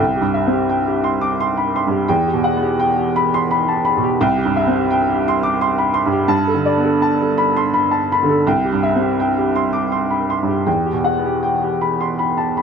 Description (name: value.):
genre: neoclassical minimalist piano.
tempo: 84 BPM.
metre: 3/4.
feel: uneven beats, rubato.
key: unclear.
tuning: A4 = 440 Hz.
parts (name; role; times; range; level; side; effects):
clear upright piano; solo; 0.0-12.6 s; C2 to D6; -15 LUFS; equal; none.
room: little or no reverb.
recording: close, detailed microphones.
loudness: -15 LUFS.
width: side -6 dB against mid.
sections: 0.0-12.6 A section.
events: none.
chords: 0.0 C; 2.1 Emadd9; 4.2 C; 6.3 Gadd9; 8.5 C; 10.7 Emadd9.